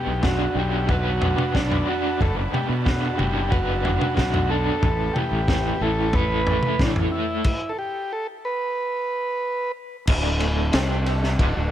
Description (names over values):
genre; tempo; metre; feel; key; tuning
psychedelic rock; 91 BPM; 4/4; straight; D mixolydian; A4 = 440 Hz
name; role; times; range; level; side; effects
overdriven combo organ; melody; 0.0-9.7 s; D4 to B4; -26 LUFS; right 1 dB; tape echo
muted chamber string section; sustained chords; 0.0-11.7 s; D3 to B5; -35 LUFS; right 3 dB; none
raw garage guitar; riff; 0.0-11.7 s; D2 to B4; -26 LUFS; equal; overdrive, tremolo
fuzz fingered electric bass; bass; 0.1-11.7 s; D1 to B2; -25 LUFS; equal; overdrive
crunchy breakbeat drum kit; drums; 0.2-11.5 s; crash cymbal, kick drum, ride cymbal, snare drum, toms; -24 LUFS; equal; none
room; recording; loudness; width
small room ambience; none; -20 LUFS; side -11 dB against mid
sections
0.0-10.1 A section; 10.1-11.7 B section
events
stop 7.5-10.1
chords
0.0 Bm7; 4.8 Asus2; 10.1 D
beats
0.23 0.89 1.55 | 2.20 2.86 3.52 4.17 | 4.83 5.49 6.14 6.80 | 7.46 8.11 8.77 9.43 | 10.08 10.73 11.39